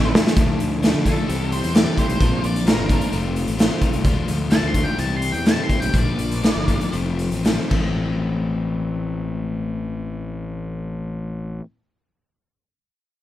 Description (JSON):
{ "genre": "indie rock", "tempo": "110-131 BPM", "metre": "4/4", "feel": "straight", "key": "A minor", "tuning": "A4 = 441 Hz", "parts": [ { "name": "octave-fuzz lead guitar", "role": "melody", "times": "0.0-6.9 s", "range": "A4 to C6", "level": "-28 LUFS", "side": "left 1 dB", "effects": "distortion, slapback echo" }, { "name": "crunchy overdriven guitar", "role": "riff", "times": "0.0-11.6 s", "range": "E3 to G4", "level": "-26 LUFS", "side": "left 6 dB", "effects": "none" }, { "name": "electric guitar through a small old amp", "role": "riff", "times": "0.0-4.0 s", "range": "E3 to E4", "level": "-30 LUFS", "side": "right 7 dB", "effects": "none" }, { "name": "fuzz fingered electric bass", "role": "bass", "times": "0.0-11.6 s", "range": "F1 to D3", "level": "-26 LUFS", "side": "equal", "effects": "overdrive" }, { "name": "raw garage drum kit", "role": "drums", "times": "0.1-7.8 s", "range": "crash cymbal, hi-hat, kick drum, snare drum", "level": "-20 LUFS", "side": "equal", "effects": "none" } ], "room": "little or no reverb", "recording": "rough home demo mix", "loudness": "-18 LUFS", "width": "side -13 dB against mid", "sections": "0.4-8.0 A section; 8.0-12.3 B section", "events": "drum fill 0.0-0.4; lead electric guitar solo 0.4-8.0; slowing down 4.0-8.0", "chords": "0.4 Dm; 1.3 C6; 2.2 Bbadd9; 3.1 F; 4.0 Dm; 5.0 C; 5.9 Bb; 6.9 F; 7.7 Am", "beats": "| 0.36 0.82 1.28 1.74 | 2.20 2.66 3.12 3.59 | 4.05 4.51 4.98 5.45 | 5.93 6.43 6.93 7.45 | 7.99 8.53 9.07 9.62 | 10.16 10.71 11.25" }